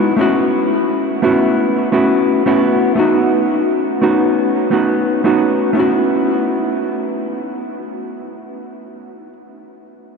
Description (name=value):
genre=chillout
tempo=86 BPM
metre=4/4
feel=swing 54% on 16ths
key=A lydian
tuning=A4 = 440 Hz
part: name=hollow-body jazz guitar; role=accompaniment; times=0.0-9.3 s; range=G#3 to F#4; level=-14 LUFS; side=equal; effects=auto-pan, low-pass filter, diffuse ambient delay
room=wet huge ambient reverb, RT60 8.3 s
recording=dreamy mix soaked in reverb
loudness=-13 LUFS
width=side -5 dB against mid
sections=0.0-5.8 A section; 5.8-8.6 B section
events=none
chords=0.2 A6; 3.0 B7; 5.8 A6